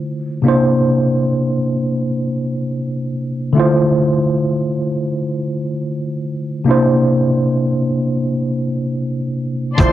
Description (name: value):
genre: lo-fi hip hop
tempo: free time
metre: none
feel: none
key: unclear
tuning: A4 = 440 Hz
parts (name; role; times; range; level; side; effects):
- tine electric piano; accompaniment; 0.0-9.9 s; C3 to C5; -15 LUFS; equal; overdrive, fast stereo tremolo, low-pass filter
- warm studio string section; sustained chords; 9.8-9.9 s; F3 to C6; -20 LUFS; left 3 dB; low-pass filter
- upright bass; bass; 9.8-9.9 s; D2; -17 LUFS; equal; none
- lo-fi sampler-style drum kit; drums; 9.8-9.9 s; hi-hat, kick drum; -14 LUFS; equal; vintage 12-bit sampler grit
- tube shaker; percussion; 9.8-9.9 s; none; -39 LUFS; left 3 dB; none
room: light reverb, small room ambience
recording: echo-heavy mix, cassette tape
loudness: -15 LUFS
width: side -12 dB against mid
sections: 0.0-9.8 A section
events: none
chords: 0.4 C7; 3.6 Dm7; 6.7 C7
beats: free time